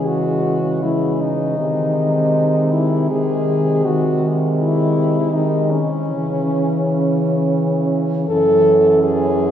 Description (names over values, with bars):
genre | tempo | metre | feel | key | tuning
classical, lyrical piece for horn quartet | 81 BPM | 3/4 | rubato | C# minor | A4 = 437 Hz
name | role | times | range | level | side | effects
clear French horn | melody | 0.0-9.5 s | C#4 to A4 | -18 LUFS | left 1 dB | none
mellow French horn | second line | 0.0-9.5 s | G#3 to C#4 | -24 LUFS | right 6 dB | none
dark French horn | accompaniment | 0.0-9.5 s | D#3 to E3 | -20 LUFS | left 2 dB | none
warm French horn | bass | 0.0-9.5 s | F#2 to C#3 | -23 LUFS | right 2 dB | none
room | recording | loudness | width
wet church reverb, RT60 3.6 s | heard from further back in the room | -15 LUFS | side -9 dB against mid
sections
0.0-9.5 A section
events
none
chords
0.0 C#m; 1.6 G#/B#; 6.1 C#m; 8.3 F#m7